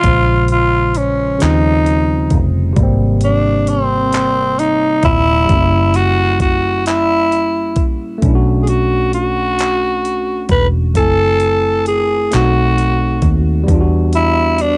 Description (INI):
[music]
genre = slow six-eight R&B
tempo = 44 BPM (dotted quarters)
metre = 6/8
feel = straight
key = unclear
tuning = A4 = 440 Hz
[part]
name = growling tenor saxophone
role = melody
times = 0.0-14.8 s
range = B#3 to B4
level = -17 LUFS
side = equal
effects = cassette tape
[part]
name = tine electric piano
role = accompaniment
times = 0.0-14.8 s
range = B#2 to G#5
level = -22 LUFS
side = equal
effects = cassette tape
[part]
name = dusty soul sampler-style drum kit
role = drums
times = 0.0-14.8 s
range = handclaps, hi-hat, kick drum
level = -20 LUFS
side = equal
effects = cassette tape
[part]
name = vintage muted fingered electric bass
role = bass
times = 0.1-14.8 s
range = D#1 to E2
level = -19 LUFS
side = equal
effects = none
[sound]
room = light reverb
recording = home recording on cassette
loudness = -14 LUFS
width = mono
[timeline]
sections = 0.0-14.8 A section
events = none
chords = 0.0 A#m9; 1.4 D#13; 2.8 G#maj9; 5.5 F#7b9; 8.2 Bm9; 11.0 F#m7b5; 12.3 B7b9; 13.7 Em9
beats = | 0.04 1.41 | 2.77 4.13 | 5.50 6.86 | 8.22 9.59 | 10.95 12.31 | 13.68